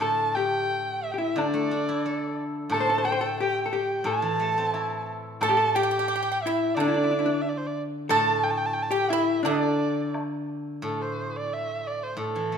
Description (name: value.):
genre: chinese traditional, Chinese chamber ensemble.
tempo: 89 BPM.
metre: 2/4.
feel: rubato.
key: D shang mode.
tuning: A4 = 440 Hz.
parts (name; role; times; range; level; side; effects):
dark erhu; melody; 0.0-12.6 s; A4 to A5; -27 LUFS; right 2 dB; none.
vintage hollow-body jazz guitar; second line; 0.0-10.1 s; D4 to C5; -28 LUFS; left 4 dB; none.
steel-string zither; accompaniment; 0.0-12.6 s; A2 to A4; -30 LUFS; equal; none.
woodblock; percussion; 0.0-10.3 s; none; -35 LUFS; left 2 dB; none.
pipa; second line; 5.4-10.1 s; D4 to A4; -28 LUFS; right 7 dB; none.
room: moderate scoring stage reverb, RT60 1.8 s.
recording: minimal, uncompressed stereo recording.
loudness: -23 LUFS.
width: side -7 dB against mid.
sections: 0.0-10.8 A section; 10.8-12.6 B section.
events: none.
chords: none.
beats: | 0.01 0.70 | 1.38 2.05 | 2.72 3.38 | 4.05 4.73 | 5.42 6.10 | 6.77 7.44 | 8.10 8.77 | 9.45 10.14 | 10.82 11.50 | 12.18.